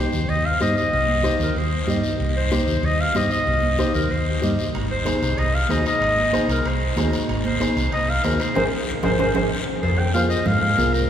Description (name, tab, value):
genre	latin, cumbia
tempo	189 BPM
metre	4/4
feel	straight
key	C minor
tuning	A4 = 440 Hz
part	clear clarinet	melody	0.0-11.1 s	Bb4 to G5	-23 LUFS	left 1 dB	none
part	warm upright piano	accompaniment	0.0-11.0 s	Eb4 to Eb5	-26 LUFS	left 2 dB	none
part	hollow-body short-scale fingered electric bass	bass	0.0-11.0 s	Ab1 to Ab2	-23 LUFS	equal	none
part	guiro	percussion	0.1-11.1 s	none	-33 LUFS	left 4 dB	none
part	congas	percussion	0.6-10.9 s	none	-28 LUFS	right 3 dB	none
part	timbales and cowbell	percussion	4.7-10.6 s	none	-31 LUFS	right 2 dB	none
room	wet cathedral reverb, RT60 7.2 s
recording	recorded in a church or concert hall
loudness	-18 LUFS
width	side -9 dB against mid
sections	0.0-9.8 A section; 9.8-11.1 B section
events	band accent 8.6-9.8; drum fill 8.9-9.8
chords	0.0 Cm; 4.7 Ab; 9.8 Fm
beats	0.29 0.61 | 0.93 1.24 1.56 1.88 | 2.20 2.52 2.83 3.15 | 3.47 3.79 4.11 4.42 | 4.74 5.06 5.38 5.70 | 6.01 6.33 6.65 6.97 | 7.29 7.61 7.92 8.24 | 8.56 8.88 9.20 9.51 | 9.83 10.15 10.46 10.78 | 11.10